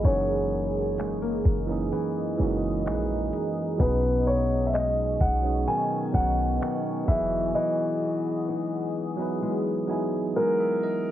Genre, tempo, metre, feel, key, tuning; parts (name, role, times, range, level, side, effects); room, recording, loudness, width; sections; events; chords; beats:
contemporary R&B; 64 BPM; 4/4; straight; B major; A4 = 441 Hz
bell-like tine electric piano; accompaniment; 0.0-11.1 s; E3 to G#5; -30 LUFS; right 6 dB; medium stereo tremolo, cassette tape
deep dark ambient pad; sustained chords; 0.0-11.1 s; B3 to D#6; -33 LUFS; right 1 dB; chorus, built-in reverb, sidechain pumping, cassette tape
nylon-string guitar; arpeggios; 0.0-11.1 s; F#2 to F#4; -31 LUFS; left 6 dB; cassette tape, tape echo
clean 808-style bass; bass; 0.0-7.5 s; E1 to B1; -29 LUFS; equal
dusty soul sampler-style drum kit; drums; 0.0-7.3 s; finger snaps, hi-hat, kick drum; -24 LUFS; equal; cassette tape
warm grand piano; melody; 0.1-11.1 s; A#4 to G#5; -27 LUFS; equal; cassette tape
digital ambience; home recording on cassette, low-pass filter; -24 LUFS; side -12 dB against mid
0.0-11.1 A section
filter sweep 0.0-11.1; break 7.5-11.1; tine electric piano fill 9.4-11.1
0.0 F#13; 3.8 B69; 7.1 Emaj9
| 0.05 0.99 1.92 2.86 | 3.80 4.74 5.67 6.61 | 7.55 8.49 9.42 10.36